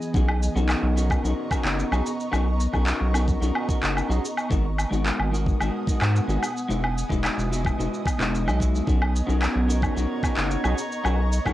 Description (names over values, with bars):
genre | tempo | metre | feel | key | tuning
sunset chillout | 110 BPM | 4/4 | straight | B major | A4 = 440 Hz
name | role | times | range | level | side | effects
ethereal airy pad | sustained chords | 0.0-11.5 s | E3 to D#6 | -31 LUFS | right 2 dB | ensemble chorus, built-in reverb, tremolo, plate reverb
electronic shaker, woodblock and handclaps | drums | 0.0-11.5 s | none | -28 LUFS | equal | cassette tape
drifting glass-harmonics texture | texture | 0.0-0.2, 9.2-11.5 s | G#4 to A#5 | -37 LUFS | right 2 dB | chorus, built-in reverb, plate reverb
electric guitar at the edge of break-up | accompaniment | 0.1-11.5 s | G#3 to D#5 | -29 LUFS | left 2 dB | auto-pan, tape echo, plate reverb
round analog bass | bass | 0.1-11.5 s | E1 to G#2 | -24 LUFS | equal | none
electronic kick drum | drums | 0.1-11.5 s | none | -25 LUFS | equal | cassette tape
room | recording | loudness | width
moderate studio reverb, RT60 0.5 s | home recording on cassette | -21 LUFS | side -14 dB against mid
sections
0.1-11.5 A section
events
none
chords
0.1 Bmaj9; 4.5 G#m7; 6.7 Emaj7; 8.9 Bmaj9